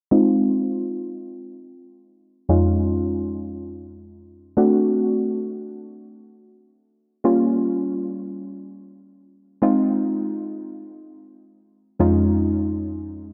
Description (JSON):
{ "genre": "pop", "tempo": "free time", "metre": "none", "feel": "none", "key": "F minor", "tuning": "A4 = 441 Hz", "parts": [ { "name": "soft round pluck", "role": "accompaniment", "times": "0.1-13.3 s", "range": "F2 to F#4", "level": "-22 LUFS", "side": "equal", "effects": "chorus, low-pass filter" } ], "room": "wet lush hall reverb, RT60 2.6 s", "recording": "dark, warm production", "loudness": "-22 LUFS", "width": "mono", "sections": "0.1-13.3 A section", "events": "filter sweep on synth pluck 0.1-13.3", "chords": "0.1 Fm7; 2.5 Dbadd9/F; 4.6 D7; 7.2 Gm7b5; 9.6 Fm7; 12.0 Dbadd9/F" }